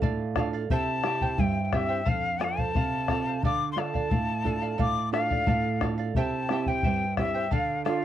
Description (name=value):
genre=andean folk, Andean ensemble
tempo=88 BPM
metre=2/4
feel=straight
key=D minor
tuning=A4 = 441 Hz
part: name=charango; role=accompaniment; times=0.0-8.0 s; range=E4 to G5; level=-34 LUFS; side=right 7 dB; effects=none
part: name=nylon-string guitar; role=accompaniment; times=0.0-8.0 s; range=F2 to A4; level=-29 LUFS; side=right 4 dB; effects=none
part: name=bombo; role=percussion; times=0.0-8.0 s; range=none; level=-29 LUFS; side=left 3 dB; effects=none
part: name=breathy bright quena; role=melody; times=0.7-8.0 s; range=E5 to D6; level=-29 LUFS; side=left 4 dB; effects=none
part: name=breathy bright large pan pipes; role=second line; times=7.9-8.0 s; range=F4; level=-30 LUFS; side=right 8 dB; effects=none
room=light reverb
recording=dry, close 1970s-style studio recording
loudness=-24 LUFS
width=side -11 dB against mid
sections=0.0-8.0 A section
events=none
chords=0.0 Dm; 0.7 C; 2.1 F; 3.4 Dm; 6.2 C; 7.5 Dm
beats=0.03 | 0.71 1.39 | 2.07 2.75 | 3.43 4.11 | 4.79 5.48 | 6.16 6.84 | 7.52